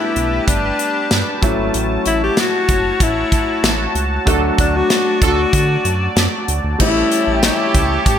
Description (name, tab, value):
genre	1980s-style pop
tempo	95 BPM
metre	4/4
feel	straight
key	unclear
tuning	A4 = 440 Hz
part	bright alto saxophone	melody	0.0-8.2 s	D4 to G4	-19 LUFS	left 3 dB	ping-pong delay
part	warm concert grand piano	accompaniment	0.0-8.2 s	F#3 to F#4	-22 LUFS	equal	lush chorus
part	sweeping resonant pad	sustained chords	0.0-8.2 s	F#4 to A5	-23 LUFS	equal	chorus
part	round analog bass	bass	0.2-8.2 s	F#1 to D3	-21 LUFS	right 1 dB	none
part	modern studio drum kit	drums	0.2-8.2 s	crash cymbal, hi-hat, kick drum, snare drum, tambourine	-17 LUFS	equal	gated reverb
part	clear horn section	stabs	4.3-8.2 s	E3 to A4	-23 LUFS	right 5 dB	ping-pong delay
room	moderate plate reverb, RT60 1.9 s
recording	bright 1980s-style digital production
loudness	-14 LUFS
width	side -9 dB against mid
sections	0.0-6.8 A section; 6.8-8.2 B section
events	band accent 4.3-6.8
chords	0.0 Gadd9; 1.4 A6; 4.3 D; 6.8 A7